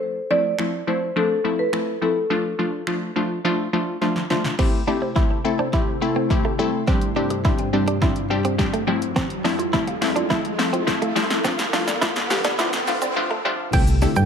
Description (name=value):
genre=dance-pop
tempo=105 BPM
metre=4/4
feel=straight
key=C major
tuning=A4 = 440 Hz
part: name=marimba with medium hard mallets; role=melody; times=0.0-4.0 s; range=A4 to D5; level=-22 LUFS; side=equal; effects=ping-pong delay
part: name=wavetable chord stab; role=accompaniment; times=0.0-14.3 s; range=F3 to A4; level=-23 LUFS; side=left 2 dB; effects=sidechain pumping
part: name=punchy analog drum machine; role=drums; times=0.6-14.3 s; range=crash cymbal, finger snaps, hi-hat, kick drum, shaker, snare drum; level=-23 LUFS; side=equal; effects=none
part: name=glassy FM pad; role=sustained chords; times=4.9-14.3 s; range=D2 to C5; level=-28 LUFS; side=left 1 dB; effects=ensemble chorus, built-in reverb, sidechain pumping
part: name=mallet-like synth pluck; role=arpeggios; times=4.6-13.4 s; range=F4 to D6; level=-32 LUFS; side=equal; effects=chorus, sidechain pumping, ping-pong delay
part: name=direct-recorded clean electric guitar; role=riff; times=4.6-14.2 s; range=G3 to E4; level=-27 LUFS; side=right 4 dB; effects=wide subtle chorus
part: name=riser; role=sound effects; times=7.4-13.2 s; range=none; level=-30 LUFS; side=right 1 dB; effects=none
part: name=hollow square pluck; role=melody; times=13.7-14.3 s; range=G5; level=-25 LUFS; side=right 4 dB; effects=chorus, ping-pong delay
part: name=solid FM bass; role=bass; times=13.7-14.3 s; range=C2 to G2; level=-18 LUFS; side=equal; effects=sidechain pumping
room=light reverb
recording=high-pass filter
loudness=-19 LUFS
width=side -7 dB against mid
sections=0.0-4.6 A section; 4.6-13.7 B section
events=drum fill 4.0-4.6, 4.6-13.2; build-up 4.6-13.7; filter sweep 4.6-13.7; riser 7.4-13.7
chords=0.0 Fmaj7; 2.3 Dm; 4.6 C6; 6.9 Gsus4; 8.9 Fmaj7; 11.4 Dm; 13.7 C6